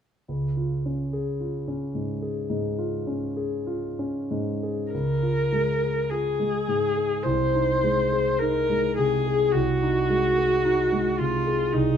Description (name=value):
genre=classical, romantic duo for viola and grand piano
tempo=45-55 BPM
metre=4/4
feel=rubato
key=Db major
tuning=A4 = 442 Hz
part: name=warm concert grand piano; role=accompaniment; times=0.3-12.0 s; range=C2 to Ab4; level=-25 LUFS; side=equal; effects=none
part: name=rich viola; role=melody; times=4.9-12.0 s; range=Eb4 to C5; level=-23 LUFS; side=left 1 dB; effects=none
room=moderate large studio reverb, RT60 1.3 s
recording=minimal, uncompressed stereo recording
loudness=-22 LUFS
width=side -8 dB against mid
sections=0.3-4.9 A section; 4.9-12.0 B section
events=none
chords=0.3 Db; 7.2 Ab/C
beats=| 0.28 1.40 2.50 3.67 | 4.93 6.11 7.25 8.40 | 9.53 10.64 11.73